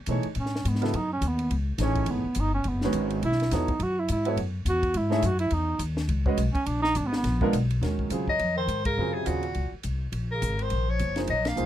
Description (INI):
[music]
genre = modal jazz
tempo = 209 BPM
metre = 4/4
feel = swing 59% on 8ths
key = C# minor, Eb dorian from 7.8 s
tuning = A4 = 440 Hz
[part]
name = warm upright piano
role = accompaniment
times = 0.1-11.7 s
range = C#3 to E5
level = -28 LUFS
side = right 2 dB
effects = none
[part]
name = upright bass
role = bass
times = 0.1-11.7 s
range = F#1 to B2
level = -28 LUFS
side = left 1 dB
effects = none
[part]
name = compact cocktail drum kit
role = drums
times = 0.1-11.7 s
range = hi-hat, kick drum, ride cymbal, snare drum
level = -35 LUFS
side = left 1 dB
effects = none
[part]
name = warm bass clarinet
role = second line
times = 0.4-11.7 s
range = Bb2 to F#4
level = -29 LUFS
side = right 2 dB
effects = none
[part]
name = mellow soprano saxophone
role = melody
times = 8.3-11.7 s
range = Gb4 to F5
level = -28 LUFS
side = left 2 dB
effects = none
[sound]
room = little or no reverb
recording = close, detailed microphones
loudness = -24 LUFS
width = side -12 dB against mid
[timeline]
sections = 0.0-7.8 A section; 7.8-11.7 B section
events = bass clarinet solo 0.0-7.8; band accent 8.8, 11.4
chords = 0.0 C#9sus4; 3.2 Bsus4; 6.7 A#7b9; 7.8 Ebm9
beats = 0.08 0.36 0.65 | 0.94 1.22 1.51 1.79 | 2.08 2.37 2.65 2.94 | 3.23 3.52 3.80 4.09 | 4.38 4.66 4.95 5.24 | 5.53 5.81 6.10 6.39 | 6.67 6.96 7.25 7.54 | 7.83 8.12 8.40 8.69 | 8.98 9.27 9.56 9.85 | 10.14 10.43 10.71 11.00 | 11.29 11.58